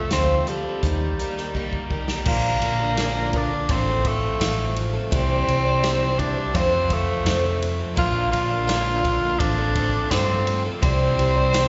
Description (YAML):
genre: folk rock and heartland rock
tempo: 84 BPM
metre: 4/4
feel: straight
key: F major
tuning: A4 = 439 Hz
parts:
  - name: raspy tenor saxophone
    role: melody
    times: 0.0-11.7 s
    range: G3 to F4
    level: -26 LUFS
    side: equal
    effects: analog delay
  - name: picked twelve-string acoustic guitar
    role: accompaniment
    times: 0.0-11.7 s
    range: F2 to D5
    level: -30 LUFS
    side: equal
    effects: slapback echo
  - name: overdriven semi-hollow guitar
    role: riff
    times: 0.0-11.7 s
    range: F2 to Bb4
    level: -34 LUFS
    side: equal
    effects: none
  - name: vintage muted fingered electric bass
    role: bass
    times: 0.1-11.7 s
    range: A1 to G2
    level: -27 LUFS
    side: equal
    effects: none
  - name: natural country drum kit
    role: drums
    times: 0.1-11.7 s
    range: crash cymbal, hi-hat, kick drum, ride cymbal, snare drum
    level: -30 LUFS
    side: equal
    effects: none
  - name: tambourine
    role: percussion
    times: 8.7-11.7 s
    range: none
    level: barely audible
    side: none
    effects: none
room: light reverb, small room ambience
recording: live gig heard through the venue's PA, recital hall reverb, nothing above 7.7 kHz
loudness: -22 LUFS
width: mono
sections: 0.0-2.3 A section; 2.3-11.7 B section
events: drum fill 1.5-2.3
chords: 0.0 F; 0.8 Eb; 2.3 Bb; 3.7 F/A; 5.1 Cadd9; 6.5 F; 8.0 Bb; 9.4 F/A; 10.8 Cadd9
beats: 0.12 0.83 1.54 | 2.26 2.97 3.69 4.40 | 5.12 5.83 6.54 7.26 | 7.97 8.68 9.40 10.11 | 10.82 11.54